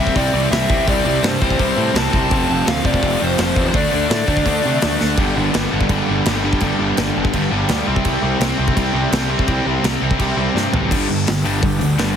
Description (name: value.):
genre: punk rock.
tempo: 167 BPM.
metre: 4/4.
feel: straight.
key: G major from 5.2 s.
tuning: A4 = 441 Hz.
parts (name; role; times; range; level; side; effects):
nasal lead guitar with a parked wah; melody; 0.0-5.0 s; C5 to A5; -22 LUFS; equal; overdrive, digital delay.
cranked stack guitar; riff; 0.0-12.2 s; F2 to D4; -21 LUFS; left 11 dB; overdrive.
crunchy overdriven guitar; riff; 0.0-12.2 s; F2 to D4; -23 LUFS; right 11 dB; none.
sludgy distorted guitar; riff; 0.0-12.2 s; G2 to G4; -26 LUFS; right 1 dB; overdrive.
fuzz picked electric bass; bass; 0.0-12.2 s; F1 to C3; -22 LUFS; equal; overdrive.
big rock drum kit; drums; 0.1-12.1 s; crash cymbal, hi-hat, kick drum, snare drum, toms; -21 LUFS; equal; none.
room: little or no reverb.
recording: heavily compressed radio sound, multiband compression.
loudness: -15 LUFS.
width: side -8 dB against mid.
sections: 0.0-5.2 A section; 5.2-10.9 B section; 10.9-12.2 C section.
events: drum fill 5.0, 10.6-10.9.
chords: 0.0 C; 2.3 F; 3.7 D; 5.2 G; 7.9 C; 10.9 G.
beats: 0.16 0.52 | 0.88 1.24 1.60 1.96 | 2.32 2.67 3.03 3.39 | 3.75 4.11 4.47 4.82 | 5.18 5.54 5.90 6.26 | 6.62 6.97 7.33 7.69 | 8.05 8.41 8.77 9.12 | 9.48 9.84 10.20 10.55 | 10.91 11.27 11.63 11.99.